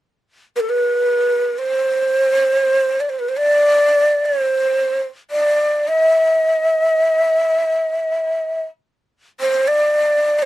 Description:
Arabic maqam ensemble; free time; C maqam rast; A4 = 443 Hz
breathy ney; solo; 0.6-10.5 s; A4 to E5-48c; -14 LUFS; equal
light reverb; dark, warm production; -15 LUFS; side -15 dB against mid
0.1-10.5 A section

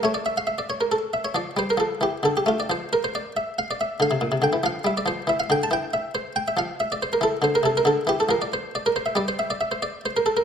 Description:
classical, baroque-style suite movement for harpsichord; 92 BPM (dotted quarters); 12/8; rubato; A4 = 440 Hz
buff-stop harpsichord; solo; 0.0-10.4 s; Bb2 to A5; -21 LUFS; equal
moderate recital hall reverb, RT60 1.3 s; -21 LUFS; side -8 dB against mid
0.0-10.4 A section
0.0 N.C.; 1.3 Dm/F; 2.7 F5; 5.3 D9sus4 (rootless); 6.6 F5; 7.8 Dm; 9.2 N.C.

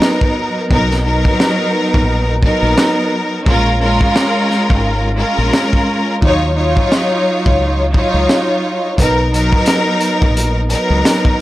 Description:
hip hop, boom-bap hip-hop; 87 BPM; 4/4; swing 56% on 16ths; A4 = 440 Hz
warm studio string section; accompaniment; 0.0-11.4 s; F#3 to Db5; -14 LUFS; equal
crunchy breakbeat drum kit; drums; 0.0-11.4 s; hi-hat, kick drum, snare drum; -15 LUFS; equal
deep dub fingered electric bass; bass; 0.7-11.0 s; Ab1 to Eb2; -17 LUFS; equal
light reverb; -12 LUFS; side -16 dB against mid
0.0-11.4 A section
break 0.0-9.0
0.0 Bmaj7; 3.5 Bbm7; 6.2 Ebm9; 9.0 Bmaj7

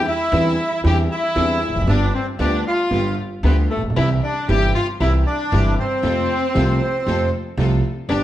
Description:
tango; 116 BPM; 4/4; rubato; C major; A4 = 441 Hz
bandoneon; melody; 0.0-8.2 s; A3 to G5; -23 LUFS; right 1 dB
warm violin; second line; 0.0-8.2 s; A3 to G4; -25 LUFS; left 4 dB
dark concert grand piano; accompaniment; 0.0-8.2 s; G1 to G4; -22 LUFS; right 1 dB
clear symphonic string section; stabs; 0.0-8.2 s; B3 to A4; -31 LUFS; left 1 dB
upright bass; bass; 0.0-8.2 s; E1 to F2; -20 LUFS; equal
moderate large studio reverb, RT60 1.3 s; -17 LUFS; side -13 dB against mid
0.0-8.2 A section
0.0 Cadd9/E; 1.9 G7; 4.0 C; 6.0 F

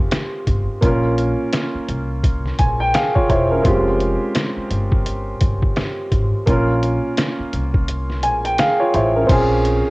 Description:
hip hop, boom-bap hip-hop; 85 BPM; 4/4; swing 60% on 16ths; A4 = 440 Hz
warm upright piano; accompaniment; 0.0-9.9 s; Ab3 to Ab5; -19 LUFS; right 1 dB; cassette tape, high-pass filter, low-pass filter
upright bass; bass; 0.0-9.8 s; E1 to C2; -22 LUFS; equal
trip hop sampler-style drum kit; drums; 0.1-9.8 s; crash cymbal, hi-hat, kick drum, snare drum; -19 LUFS; equal; cassette tape
studio ambience; home recording on cassette; -16 LUFS; side -22 dB against mid
0.0-9.3 A section
kick muted 7.9-9.3
0.0 Fmadd9; 0.8 Bbm; 3.6 Fmadd9; 6.5 Bbm; 9.3 Bbm7

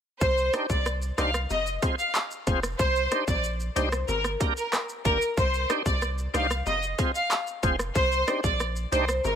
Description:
dancehall; 93 BPM; 4/4; straight; C minor; A4 = 440 Hz
rich studio violin section; melody; 0.2-9.4 s; Bb4 to F5; -27 LUFS; equal; ping-pong delay
punchy sub bass; bass; 0.2-9.4 s; F1 to C2; -30 LUFS; equal
island pop drum kit; drums; 0.2-9.4 s; handclaps, hi-hat, kick drum, rim click, shaker; -28 LUFS; equal; overdrive
bongos; percussion; 0.2-9.4 s; -39 LUFS; left 9 dB
bright tonewheel organ; accompaniment; 0.5-9.1 s; Bb3 to C5; -30 LUFS; right 1 dB; overdrive, chorus vibrato, slow rotary speaker
little or no reverb; -24 LUFS; side -8 dB against mid
0.2-9.4 A section
0.2 Cmadd9; 1.5 Fm; 2.8 Cmadd9; 4.1 Gm; 5.4 Cmadd9; 6.7 Fm; 8.0 Cmadd9

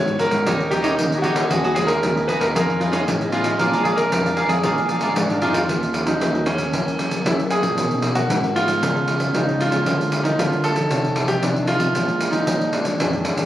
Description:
samba and choro; 115 BPM; 4/4; straight; Eb minor; A4 = 440 Hz
warm grand piano; melody; 0.0-13.5 s; Db4 to Db5; -22 LUFS; equal
cavaquinho; accompaniment; 0.0-5.7 s; Eb4 to Gb5; -24 LUFS; right 2 dB
nylon-string guitar; accompaniment; 0.0-13.5 s; F2 to Ab4; -28 LUFS; left 2 dB
tine electric piano; bass; 0.0-13.5 s; Ab1 to Eb3; -25 LUFS; equal
pandeiro; percussion; 0.1-13.5 s; -23 LUFS; equal
light reverb; recorded on a phone in the room, club reverb, compression; -18 LUFS; side -12 dB against mid
0.0-5.7 A section; 5.7-13.5 B section
0.5 Eb7; 1.5 Abm7/Eb; 2.6 Fm7b5; 3.6 Bb7; 5.7 Ebm7; 6.7 Gb7; 7.8 Bmaj9; 8.8 Db7; 9.9 Bb7/D; 10.9 F7/C; 12.0 Bb7

